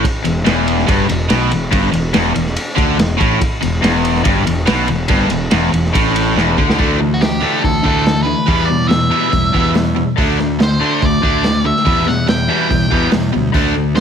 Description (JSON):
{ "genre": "classic rock", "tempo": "142 BPM", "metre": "4/4", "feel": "straight", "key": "E minor", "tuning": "A4 = 440 Hz", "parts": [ { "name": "biting overdriven guitar", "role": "riff", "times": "0.0-14.0 s", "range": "E2 to D4", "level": "-19 LUFS", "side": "right 14 dB", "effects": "none" }, { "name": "cranked stack guitar", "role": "riff", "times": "0.0-14.0 s", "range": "E2 to D4", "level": "-18 LUFS", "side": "left 10 dB", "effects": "overdrive" }, { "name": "fuzz fingered electric bass", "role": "bass", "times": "0.0-14.0 s", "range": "E1 to E2", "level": "-19 LUFS", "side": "right 1 dB", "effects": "overdrive" }, { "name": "vintage drum kit", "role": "drums", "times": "0.0-14.0 s", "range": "hi-hat, kick drum, ride cymbal, snare drum", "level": "-18 LUFS", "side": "equal", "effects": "none" }, { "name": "octave-fuzz lead guitar", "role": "melody", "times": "7.1-14.0 s", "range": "F#4 to G5", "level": "-19 LUFS", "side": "right 1 dB", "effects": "distortion, analog delay" } ], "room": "light reverb, small room reverb", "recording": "none", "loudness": "-12 LUFS", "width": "side -7 dB against mid", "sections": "0.0-6.8 A section; 6.8-14.0 B section", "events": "drum fill 6.4-6.8", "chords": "0.0 Em; 6.8 Dsus2; 8.5 Em; 10.2 D5; 11.9 Em", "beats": "| 0.04 0.46 0.88 1.30 | 1.72 2.14 2.56 2.99 | 3.41 3.83 4.25 4.67 | 5.10 5.52 5.94 6.37 | 6.79 7.21 7.63 8.06 | 8.48 8.90 9.33 9.75 | 10.17 10.60 11.02 11.44 | 11.86 12.28 12.70 13.12 | 13.54 13.97" }